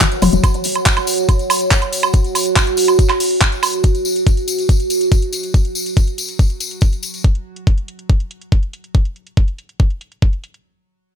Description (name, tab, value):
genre	psychedelic trance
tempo	141 BPM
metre	4/4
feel	straight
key	unclear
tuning	A4 = 440 Hz
part	overtone-sweeping drone	sustained chords	0.0-7.3 s	F#3 to F#4	-19 LUFS	right 3 dB	chorus, built-in reverb, sidechain pumping
part	electronic kick drum	drums	0.0-10.3 s	none	-13 LUFS	equal	none
part	garage drum kit	drums	0.0-10.6 s	handclaps, hi-hat, woodblock	-19 LUFS	right 3 dB	low-pass filter on hats, low-pass filter on cymbals, low-pass filter on perc, low-pass filter on snare
part	tambourine	percussion	0.0-7.2 s	none	-25 LUFS	left 5 dB	none
room	digital ambience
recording	none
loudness	-14 LUFS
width	side -8 dB against mid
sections	0.0-10.6 A section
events	filter sweep on drum 0.0-10.6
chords	none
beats	0.01 | 0.44 0.86 1.29 1.71 | 2.14 2.56 2.99 3.41 | 3.84 4.27 4.69 5.12 | 5.54 5.97 6.39 6.82 | 7.24 7.67 8.10 8.52 | 8.95 9.37 9.80 10.22